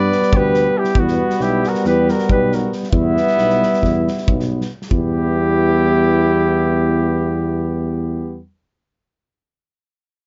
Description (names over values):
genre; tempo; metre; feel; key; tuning
balkan folk, Balkan brass band; 274 BPM (eighths); 9/8; straight; E minor; A4 = 440 Hz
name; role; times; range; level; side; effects
mellow flugelhorn; melody; 0.0-8.4 s; E4 to D5; -21 LUFS; equal; none
mellow flugelhorn; second line; 0.0-8.4 s; B3 to B4; -28 LUFS; equal; none
clear French horn; accompaniment; 0.0-8.4 s; B3; -29 LUFS; equal; none
dark euphonium; accompaniment; 0.0-8.4 s; G3; -26 LUFS; equal; none
mellow tuba; bass; 0.0-8.4 s; B1 to G2; -22 LUFS; equal; none
loose indie drum kit; percussion; 0.1-5.1 s; kick drum, snare drum; -24 LUFS; equal; none
room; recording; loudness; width
light reverb; nothing above 7.6 kHz; -17 LUFS; mono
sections
0.0-4.9 A section; 4.9-8.8 B section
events
none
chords
0.0 G; 1.0 Em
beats
0.09 0.30 0.52 0.74 | 0.96 1.18 1.40 1.61 1.83 2.05 2.27 2.49 2.71 | 2.93 3.15 3.37 3.58 3.80 4.02 4.24 4.46 4.68 | 4.90 5.12 5.34 5.56 5.78 6.00 6.22 6.44 6.66 | 6.88 7.09 7.31 7.53 7.75 7.97 8.19